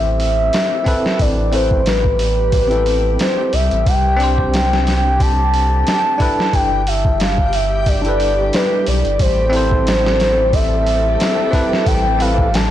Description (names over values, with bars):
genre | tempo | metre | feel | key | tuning
trip hop | 90 BPM | 4/4 | swing 55% on 16ths | A minor | A4 = 439 Hz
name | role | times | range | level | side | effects
pure breathy sine lead | melody | 0.0-12.7 s | B4 to A5 | -17 LUFS | equal | wide subtle chorus, tape echo
bell-like tine electric piano | accompaniment | 0.0-12.5 s | C4 to C5 | -23 LUFS | equal | harmonic tremolo, vintage 12-bit sampler grit, tape echo
warm sub bass | bass | 0.0-12.7 s | G1 to C2 | -18 LUFS | equal | none
backwards swelling texture | texture | 0.0-12.7 s | G3 to G4 | -28 LUFS | equal | built-in reverb
boom bap sampler-style drum kit | drums | 0.2-12.7 s | hi-hat, kick drum, snare drum | -19 LUFS | equal | none
warm studio violin section | sustained chords | 9.2-12.7 s | A3 to A4 | -26 LUFS | equal | none
room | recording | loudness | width
light reverb, digital ambience | blown-out, overdriven recording, vinyl crackle, overdrive | -13 LUFS | side -12 dB against mid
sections
0.0-12.7 A section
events
none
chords
0.0 Amadd9; 3.9 Csus2; 6.5 G6; 9.2 Amadd9